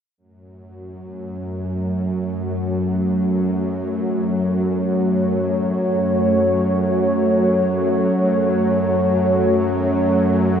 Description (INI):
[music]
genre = dark ambient drone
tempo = free time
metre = none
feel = none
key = F# minor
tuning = A4 = 440 Hz
[part]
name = deep dark ambient pad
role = sustained chords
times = 1.3-10.6 s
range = A3 to F#5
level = -20 LUFS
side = equal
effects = chorus, built-in reverb
[part]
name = bowed-like drone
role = drone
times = 0.8-10.6 s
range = F#2 to F#3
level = -20 LUFS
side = equal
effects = built-in reverb
[sound]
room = wet huge ambient reverb, RT60 8.9 s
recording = none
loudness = -17 LUFS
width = side -8 dB against mid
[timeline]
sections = 0.2-10.6 A section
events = none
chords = 0.2 F#m